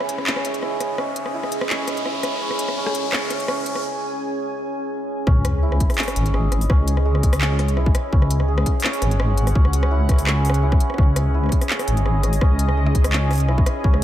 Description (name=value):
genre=half-time drum and bass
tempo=168 BPM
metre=4/4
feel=half-time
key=C# minor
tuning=A4 = 440 Hz
part: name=deep dark ambient pad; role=sustained chords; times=0.0-14.0 s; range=C#4 to G#5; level=-26 LUFS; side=right 2 dB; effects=chorus, built-in reverb, sidechain pumping
part: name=santur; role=arpeggios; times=0.0-14.0 s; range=G#3 to G#4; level=-29 LUFS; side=right 1 dB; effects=diffuse ambient delay
part: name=organic electronic drum kit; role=drums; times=0.0-14.0 s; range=handclaps, hi-hat, rim click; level=-26 LUFS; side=left 1 dB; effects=overdrive
part: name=riser and sub drop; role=sound effects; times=0.0-6.7 s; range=none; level=-30 LUFS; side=left 1 dB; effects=none
part: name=deep soft wobble bass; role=bass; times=5.3-14.0 s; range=G#1 to C#2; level=-19 LUFS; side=equal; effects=chorus
part: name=electronic kick drum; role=drums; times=5.3-13.9 s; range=none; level=-18 LUFS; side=equal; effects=none
room=moderate plate reverb, RT60 1.9 s, digital ambience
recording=dreamy mix soaked in reverb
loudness=-18 LUFS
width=side -12 dB against mid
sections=0.0-5.3 A section; 5.3-14.0 B section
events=build-up 0.0-5.3; riser 0.0-3.8; break 3.8-5.3; drop 5.3-14.0; impact 5.3-6.7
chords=0.0 C#m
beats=0.27 0.63 | 0.98 1.34 1.70 2.06 | 2.41 2.77 3.13 3.48 | 3.84 4.20 4.55 4.91 | 5.27 5.63 5.98 6.34 | 6.70 7.05 7.41 7.77 | 8.13 8.48 8.84 9.20 | 9.55 9.91 10.27 10.63 | 10.98 11.34 11.70 12.05 | 12.41 12.77 13.13 13.48 | 13.84